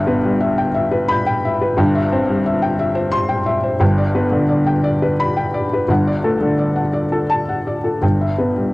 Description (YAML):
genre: neoclassical minimalist piano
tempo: 87 BPM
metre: 3/4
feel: rubato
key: G major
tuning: A4 = 442 Hz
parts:
  - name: felt-muted upright piano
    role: solo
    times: 0.0-8.7 s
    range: G1 to G6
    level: -15 LUFS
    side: left 1 dB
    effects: none
room: moderate booth ambience, RT60 0.3 s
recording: home recording on cassette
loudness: -15 LUFS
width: side -21 dB against mid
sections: 0.0-8.7 A section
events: none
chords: 0.0 Em/G; 1.8 C/G; 3.8 G; 5.9 D/G; 8.0 Em/G